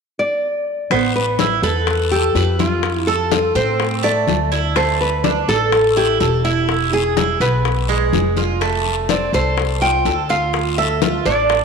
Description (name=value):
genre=latin, Cuban son and guajira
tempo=125 BPM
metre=4/4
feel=straight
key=A minor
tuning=A4 = 440 Hz
part: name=nylon-string guitar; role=melody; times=0.2-11.6 s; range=E4 to G5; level=-19 LUFS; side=left 1 dB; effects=none
part: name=Cuban tres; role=arpeggios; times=0.9-11.6 s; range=G#3 to B4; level=-20 LUFS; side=right 8 dB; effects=none
part: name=upright bass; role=bass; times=0.9-11.6 s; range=E1 to A2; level=-21 LUFS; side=equal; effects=none
part: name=bongos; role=percussion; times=0.9-11.6 s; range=none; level=-27 LUFS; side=left 12 dB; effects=none
part: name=congas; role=percussion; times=0.9-11.6 s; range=none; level=-25 LUFS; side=left 11 dB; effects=none
part: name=guiro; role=percussion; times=0.9-11.6 s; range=none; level=-29 LUFS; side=left 11 dB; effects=none
room=wet echo chamber reverb, RT60 2.3 s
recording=1960s-style stereo with parts hard left and right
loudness=-15 LUFS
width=side -5 dB against mid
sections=0.9-11.6 A section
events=drum fill 8.4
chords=0.0 N.C.; 0.9 Asus2; 2.8 F; 4.8 Dsus2; 6.7 E; 8.6 Fadd9; 10.5 Dm